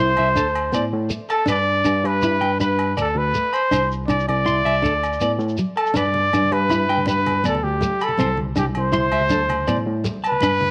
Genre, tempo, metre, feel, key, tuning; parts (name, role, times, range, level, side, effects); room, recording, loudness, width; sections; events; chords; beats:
highlife guitar band; 108 BPM (dotted quarters); 12/8; straight; G major; A4 = 440 Hz
breathy trumpet; melody; 0.0-10.7 s; G4 to D5; -23 LUFS; equal
nylon-string guitar; accompaniment; 0.0-10.6 s; F#3 to E4; -28 LUFS; equal
clean electric guitar; arpeggios; 0.0-10.5 s; A4 to C6; -29 LUFS; equal; slapback echo
tine electric piano; bass; 0.0-10.7 s; C2 to A2; -26 LUFS; equal; overdrive
agogo bells; percussion; 0.2-10.6 s; -34 LUFS; equal
shekere; percussion; 0.4-10.5 s; -32 LUFS; equal
congas; percussion; 6.0-10.7 s; -32 LUFS; equal
light reverb, studio reverb; -20 LUFS; mono
0.0-10.7 A section
0.4 D5; 1.5 G; 3.7 Cadd9; 4.8 D; 6.0 G; 8.2 Cadd9; 9.3 D5
0.37 0.93 | 1.49 2.05 2.61 3.17 | 3.72 4.28 4.84 5.40 | 5.96 6.51 7.07 7.63 | 8.19 8.75 9.30 9.86 | 10.42